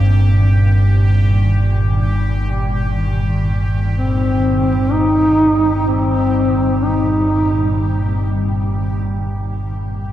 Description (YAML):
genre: dark ambient drone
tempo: free time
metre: none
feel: none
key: unclear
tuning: A4 = 440 Hz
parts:
  - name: granular cloud pad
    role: sustained chords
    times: 0.0-10.1 s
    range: Bb2 to G3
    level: -24 LUFS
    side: equal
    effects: built-in reverb
  - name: deep rumbling drone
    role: drone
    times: 0.0-10.1 s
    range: G1 to G2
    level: -16 LUFS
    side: equal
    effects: built-in reverb
  - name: bubbling stepped-filter texture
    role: texture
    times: 0.0-10.1 s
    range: G4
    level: -31 LUFS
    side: right 1 dB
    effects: chorus, built-in reverb
  - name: dark duduk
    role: melody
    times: 4.0-7.8 s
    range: C4 to Eb4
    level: -18 LUFS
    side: equal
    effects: tape echo
room: wet cathedral reverb, RT60 6.2 s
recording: in a vast, echoing space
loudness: -14 LUFS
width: side -12 dB against mid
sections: 0.0-10.1 A section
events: fade-out on ambient pad 0.0-10.1; fade-out on synth texture 0.0-10.1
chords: 0.0 Cm/G (rootless)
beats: free time